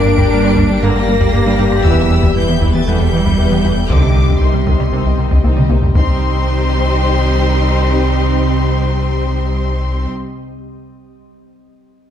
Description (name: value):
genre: cinematic, hybrid orchestral and electronic film score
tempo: 117 BPM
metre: 4/4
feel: straight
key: C minor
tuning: A4 = 440 Hz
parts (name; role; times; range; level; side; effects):
- clear studio violin section; melody; 0.0-10.1 s; C6 to D7; -24 LUFS; left 3 dB; none
- rich symphonic violin section; second line; 0.0-10.1 s; Eb4 to E5; -24 LUFS; left 4 dB; none
- warm symphonic viola section; accompaniment; 0.0-10.1 s; Eb3 to E4; -24 LUFS; equal; none
- glassy FM pad; sustained chords; 0.0-10.1 s; G3 to E5; -25 LUFS; equal; ensemble chorus, built-in reverb
- mellow French horn section; sustained chords; 0.0-10.1 s; C4 to B4; -23 LUFS; left 6 dB; none
- punchy sub bass; bass; 0.0-10.1 s; E1 to C2; -18 LUFS; left 1 dB; none
- rich studio double bass section; bass; 0.0-10.1 s; C2 to G2; -20 LUFS; right 3 dB; none
- rich symphonic cello section; bass; 0.0-10.1 s; C3 to D4; -22 LUFS; right 2 dB; none
- tight sequenced synth; arpeggios; 0.1-5.8 s; C3 to G4; -26 LUFS; left 1 dB; none
- round analog bass; riff; 0.1-5.9 s; C2 to G3; -18 LUFS; right 1 dB; none
- solo taiko drums; drums; 0.2-6.9 s; none; -18 LUFS; left 1 dB; none
- clear trombone section; sustained chords; 0.8-10.1 s; D3 to C4; -28 LUFS; right 3 dB; none
room: moderate scoring stage reverb, RT60 1.5 s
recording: dark, warm production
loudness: -11 LUFS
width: side -10 dB against mid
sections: 0.0-6.0 A section; 6.0-10.1 B section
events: drum fill 5.4-6.0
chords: 0.0 Gm; 1.9 Em; 3.9 Cm